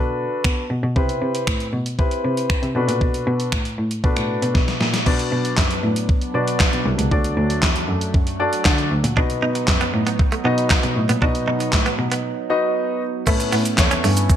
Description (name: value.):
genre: dance-pop.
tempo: 117 BPM.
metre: 4/4.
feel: straight.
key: unclear.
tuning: A4 = 440 Hz.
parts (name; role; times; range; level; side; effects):
dark baby grand piano; accompaniment; 0.0-14.4 s; B3 to A5; -24 LUFS; left 2 dB; sidechain pumping.
muted cello; bass; 0.0-14.2 s; C2 to B3; -22 LUFS; equal; sidechain pumping.
gated 80s digital drum machine; drums; 0.4-14.4 s; crash cymbal, finger snaps, handclaps, hi-hat, kick drum, shaker, snare drum; -20 LUFS; equal; gated reverb, gated reverb snare.
chorused pulse-width pad; sustained chords; 5.1-14.4 s; F#3 to D#4; -28 LUFS; right 4 dB; sidechain pumping.
direct-recorded clean electric guitar; riff; 9.2-14.3 s; A3 to D#4; -26 LUFS; right 4 dB; lush chorus.
room: light reverb.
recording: bright 1980s-style digital production.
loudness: -17 LUFS.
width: side -10 dB against mid.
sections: 0.0-5.1 A section; 5.1-13.3 B section; 13.3-14.4 C section.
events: drum fill 4.6-5.1; grand piano fill 8.1-9.2; break 12.2-13.3.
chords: 0.0 Bm7; 1.0 Cmaj7; 2.8 Bm7; 5.1 Bm; 7.1 D; 9.2 B; 13.3 Aadd9.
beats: 0.45 | 0.96 1.47 1.99 2.50 | 3.01 3.52 4.04 4.55 | 5.06 5.58 6.09 6.60 | 7.12 7.63 8.14 8.65 | 9.17 9.68 10.19 10.71 | 11.22 11.73 12.24 12.76 | 13.27 13.78 14.29.